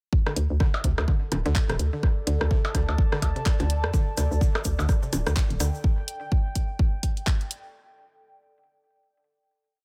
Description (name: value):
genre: minimal techno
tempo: 126 BPM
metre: 4/4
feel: swing 58% on 16ths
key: unclear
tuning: A4 = 440 Hz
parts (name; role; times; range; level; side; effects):
- electronic kick drum; drums; 0.1-7.4 s; none; -26 LUFS; equal; none
- warbly tape-like pad; texture; 1.3-7.7 s; A4 to A5; -40 LUFS; equal; chorus, built-in reverb, sidechain pumping
- mallet-like synth pluck; riff; 0.3-5.6 s; C3 to D3; -37 LUFS; equal; chorus, sidechain pumping, tape echo
- electronic rim click and percussion blips; percussion; 0.3-5.7 s; none; -34 LUFS; equal; digital delay
- hollow knocking FM bass; bass; 0.4-5.7 s; D1 to F2; -27 LUFS; equal; sidechain pumping
- house drum kit; drums; 0.4-7.6 s; handclaps, hi-hat; -34 LUFS; equal; none
- tube shaker; percussion; 3.9-5.8 s; none; -40 LUFS; equal; none
room: little or no reverb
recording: none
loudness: -25 LUFS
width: mono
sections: 0.1-7.7 drop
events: drop 0.1-7.7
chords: 0.1 D5